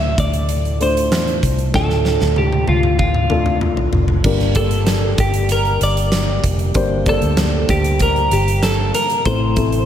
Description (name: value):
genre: piano-driven pop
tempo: 96 BPM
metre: 4/4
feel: straight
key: G dorian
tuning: A4 = 440 Hz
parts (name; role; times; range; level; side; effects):
- twelve-string electric guitar; melody; 0.0-9.9 s; F4 to E5; -20 LUFS; right 1 dB; spring reverb
- dark upright piano; accompaniment; 0.0-9.9 s; G2 to D5; -22 LUFS; left 3 dB; lush chorus
- vintage muted fingered electric bass; bass; 0.0-9.9 s; F1 to E2; -19 LUFS; equal; none
- huge arena drum kit; drums; 0.2-9.9 s; crash cymbal, hi-hat, kick drum, snare drum, toms; -20 LUFS; equal; none
- mellow tonewheel organ; sustained chords; 4.2-9.9 s; C3 to G4; -27 LUFS; right 1 dB; slow rotary speaker
room: moderate lush hall reverb, RT60 2.1 s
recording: dreamy mix soaked in reverb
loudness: -14 LUFS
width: side -10 dB against mid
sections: 0.0-4.2 A section; 4.2-9.9 B section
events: drum fill 1.7-4.2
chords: 0.0 Dm; 4.2 Gm; 9.3 Am